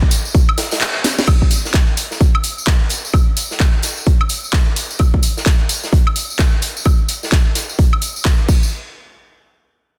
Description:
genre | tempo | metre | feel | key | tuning
house | 129 BPM | 4/4 | swing 61% on 16ths | none | none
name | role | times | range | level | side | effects
electronic kick drum | drums | 0.0-8.6 s | none | -16 LUFS | equal | none
big rock drum kit | drums | 0.1-8.4 s | hi-hat, snare drum | -31 LUFS | equal | sidechain pumping on hats, high-pass filter on hats, high-pass filter on snare, high-pass filter on room
house drum kit | drums | 0.1-8.6 s | crash cymbal, handclaps, hi-hat, snare drum, woodblock | -24 LUFS | equal | none
tambourine | percussion | 0.1-8.7 s | none | -27 LUFS | equal | none
room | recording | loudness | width
light reverb, small room ambience | dense, heavily limited modern master | -16 LUFS | mono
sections
0.0-1.3 A section; 1.3-8.7 B section; 8.7-10.0 C section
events
drop 0.0-1.3; kick drops out 0.8-1.3; band accent 0.8; drum fill 1.0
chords
none

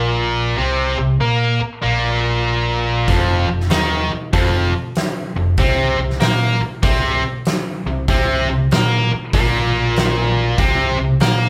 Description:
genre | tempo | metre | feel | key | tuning
blues rock power trio and southern rock | 96 BPM | 4/4 | swing 64% on 8ths | unclear | A4 = 444 Hz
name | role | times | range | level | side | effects
distorted electric guitar | riff | 0.0-11.5 s | F2 to Bb4 | -20 LUFS | equal | overdrive
overdriven fingered electric bass | bass | 0.0-11.5 s | F1 to Bb2 | -23 LUFS | equal | none
huge arena drum kit | drums | 3.1-11.4 s | hi-hat, kick drum, snare drum | -22 LUFS | equal | none
room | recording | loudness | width
moderate large studio reverb, RT60 0.9 s | band playing live in one room | -17 LUFS | mono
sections
0.0-11.5 A section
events
none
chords
0.0 Bbsus2; 3.1 Ebsus2/F; 5.6 Bbsus2

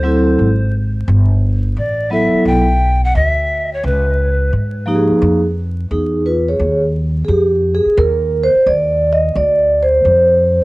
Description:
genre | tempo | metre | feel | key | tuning
hip hop, jazz-hop | 87 BPM | 4/4 | swing 65% on 16ths | unclear | A4 = 440 Hz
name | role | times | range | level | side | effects
bright reedy large pan pipes | melody | 0.0-4.5 s | Cb5 to G5 | -19 LUFS | left 1 dB | cassette tape, analog delay
vibraphone with soft mallets | accompaniment | 0.0-10.6 s | F3 to Eb5 | -13 LUFS | right 1 dB | cassette tape
upright bass | bass | 0.0-10.6 s | G1 to Ab2 | -16 LUFS | equal | none
room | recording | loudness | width
light reverb | home recording on cassette, vinyl crackle | -12 LUFS | side -21 dB against mid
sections
0.0-6.6 A section; 6.6-10.6 B section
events
vibraphone solo 6.6-10.6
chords
0.0 D7; 1.1 Gmaj7; 3.8 Db9; 6.6 Ebsus2; 9.4 G7sus4 (rootless)

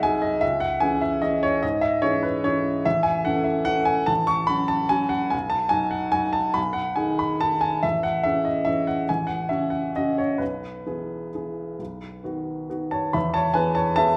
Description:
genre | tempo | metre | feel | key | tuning
classical, piano waltz | 126-158 BPM | 3/4 | rubato | E major | A4 = 444 Hz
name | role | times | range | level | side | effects
warm upright piano | solo | 0.0-14.2 s | A1 to C#6 | -24 LUFS | equal | none
room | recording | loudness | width
wet recital hall reverb, RT60 1.5 s | none | -24 LUFS | mono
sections
0.0-13.1 A section; 13.1-14.2 B section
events
none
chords
0.4 C#m; 2.8 A; 4.1 F#m/A; 5.3 B; 7.8 Amaj7; 10.4 E/B; 11.8 B; 13.1 E

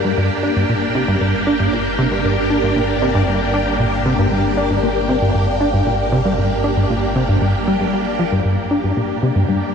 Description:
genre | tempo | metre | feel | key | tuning
ambient | 116 BPM | 4/4 | straight | G minor | A4 = 440 Hz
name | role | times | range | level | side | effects
phased string machine | sustained chords | 0.0-9.7 s | Bb3 to G4 | -19 LUFS | equal | ensemble chorus, phaser, shimmer reverb
plucky analog bass | riff | 0.0-9.6 s | G2 to D4 | -17 LUFS | equal | lush chorus, analog delay
analog drone | bass | 1.0-8.3 s | G1 | -26 LUFS | equal | chorus
room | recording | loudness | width
wet huge ambient reverb, RT60 7.6 s | dark, warm production | -15 LUFS | side -6 dB against mid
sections
0.0-8.3 A section; 8.3-9.7 B section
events
none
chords
0.0 Gm

